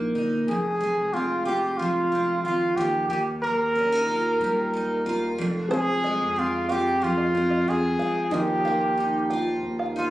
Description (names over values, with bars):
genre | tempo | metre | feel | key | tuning
acoustic pop | 92 BPM | 4/4 | straight | unclear | A4 = 440 Hz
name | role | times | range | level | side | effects
picked steel-string acoustic guitar | accompaniment | 0.0-10.1 s | F2 to F4 | -27 LUFS | equal | double-tracked left and right
round analog bass | bass | 0.0-10.1 s | F1 to F2 | -33 LUFS | equal | none
breathy trumpet | melody | 0.5-10.1 s | F4 to Bb4 | -24 LUFS | equal | slapback echo
felt-muted upright piano | accompaniment | 5.7-10.1 s | F3 to C5 | -32 LUFS | left 1 dB | none
open-back banjo | arpeggios | 5.7-10.0 s | C5 to G5 | -33 LUFS | right 3 dB | slapback echo
room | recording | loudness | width
moderate spring reverb, RT60 1.2 s, small room ambience | recorded on a phone in the room, studio reverb, vinyl crackle, compression | -22 LUFS | side -15 dB against mid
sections
0.5-10.1 A section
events
none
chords
0.5 Fm; 2.8 Ebadd9; 5.4 Fm; 8.3 Ebadd9